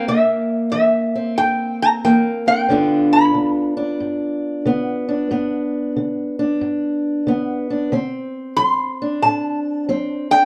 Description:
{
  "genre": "acoustic country blues, solo or duo",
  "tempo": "92 BPM",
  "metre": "4/4",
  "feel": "swing 64% on 8ths",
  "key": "G mixolydian",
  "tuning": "A4 = 440 Hz",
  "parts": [
    { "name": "metal-body resonator slide guitar", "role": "melody", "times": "0.0-10.4 s", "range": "E5 to C6", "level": "-19 LUFS", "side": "equal", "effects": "plate reverb" },
    { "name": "fingerpicked steel-string acoustic guitar", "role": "accompaniment", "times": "0.0-10.4 s", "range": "G2 to F4", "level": "-21 LUFS", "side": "equal", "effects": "none" }
  ],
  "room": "light reverb",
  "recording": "dark, warm production",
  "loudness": "-19 LUFS",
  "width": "mono",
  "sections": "0.0-10.4 A section",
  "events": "none",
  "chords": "0.0 C7; 2.7 G7; 7.9 D7"
}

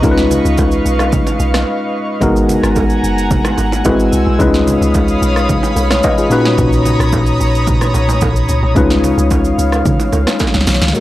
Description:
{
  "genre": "amapiano",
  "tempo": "110 BPM",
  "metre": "4/4",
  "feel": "straight",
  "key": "unclear",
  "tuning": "A4 = 440 Hz",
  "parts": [
    { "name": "tine electric piano", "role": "accompaniment", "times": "0.0-11.0 s", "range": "A#2 to E#5", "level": "-14 LUFS", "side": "left 2 dB", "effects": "low-pass filter" },
    { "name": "airy breathy pad", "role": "sustained chords", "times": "0.0-11.0 s", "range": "G#2 to E6", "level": "-20 LUFS", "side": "equal", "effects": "chorus, sidechain pumping, low-pass filter" },
    { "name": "deep log drum bass", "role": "bass", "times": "0.0-10.9 s", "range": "F#1 to C#3", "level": "-17 LUFS", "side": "equal", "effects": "none" },
    { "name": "deep house drum kit", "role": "drums", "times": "0.0-11.0 s", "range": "hi-hat, kick drum, rim click, shaker, snare drum", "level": "-17 LUFS", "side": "equal", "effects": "none" },
    { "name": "congas and bongos", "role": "percussion", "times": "0.0-10.5 s", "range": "none", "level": "-23 LUFS", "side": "right 4 dB", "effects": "none" }
  ],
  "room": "digital ambience",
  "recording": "dry, gritty hardware recording, transformer saturation",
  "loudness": "-11 LUFS",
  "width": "side -15 dB against mid",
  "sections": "0.0-10.9 A section",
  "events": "drop 0.0-10.9; break 1.7-2.2; drum fill 10.4-10.9",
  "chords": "0.0 C#9; 2.2 G#m9; 3.9 G#7alt; 4.4 C#9; 6.3 Bmaj9; 8.8 C#9"
}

